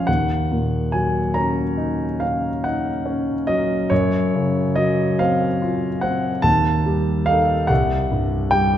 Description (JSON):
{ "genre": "classical, impressionist solo piano", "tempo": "47 BPM (dotted quarters)", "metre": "9/8", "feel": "rubato", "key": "unclear", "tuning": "A4 = 442 Hz", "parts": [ { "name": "warm concert grand piano", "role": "solo", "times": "0.0-8.8 s", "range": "C2 to Bb5", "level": "-18 LUFS", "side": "equal", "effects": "none" } ], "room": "wet scoring stage reverb, RT60 1.7 s", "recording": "none", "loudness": "-18 LUFS", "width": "side -10 dB against mid", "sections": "0.0-8.8 A section", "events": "none", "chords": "0.1 Ebm7; 3.9 Gb5; 6.5 Eb; 7.7 C5" }